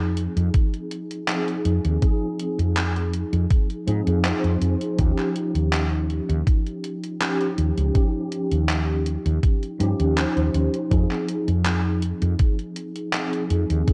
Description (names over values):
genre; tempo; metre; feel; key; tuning
vaporwave; 81 BPM; 4/4; straight; F minor; A4 = 443 Hz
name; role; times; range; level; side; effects
mellow tine electric piano; accompaniment; 0.0-13.9 s; F3 to C5; -28 LUFS; equal; ensemble chorus, tape echo
woody fretless electric bass; bass; 0.0-13.8 s; Db2 to Ab2; -24 LUFS; equal; tube saturation
gated 80s digital drum machine; drums; 0.2-13.9 s; handclaps, hi-hat; -31 LUFS; equal; gated reverb, overdrive
electronic kick drum; drums; 0.5-13.9 s; none; -22 LUFS; equal; none
room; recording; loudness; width
light reverb; cassette tape; -23 LUFS; mono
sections
0.0-13.9 A section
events
none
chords
0.0 Fm7; 5.0 Eb9; 10.9 Fm7